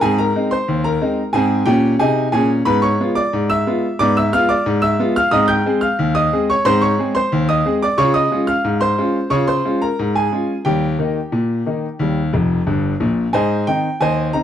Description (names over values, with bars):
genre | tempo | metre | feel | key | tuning
ragtime piano | 90 BPM | 2/4 | straight | Ab major | A4 = 439 Hz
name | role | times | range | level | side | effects
clear grand piano | solo | 0.0-14.4 s | F1 to G6 | -15 LUFS | equal | none
room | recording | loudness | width
small room ambience | dry, close 1970s-style studio recording | -15 LUFS | side -10 dB against mid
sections
0.0-13.3 A section; 13.3-14.4 B section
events
grand piano fill 12.3-13.3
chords
0.0 Ab; 2.7 Abdim7; 5.3 Ab; 8.0 Db; 10.7 Eb; 13.3 Ab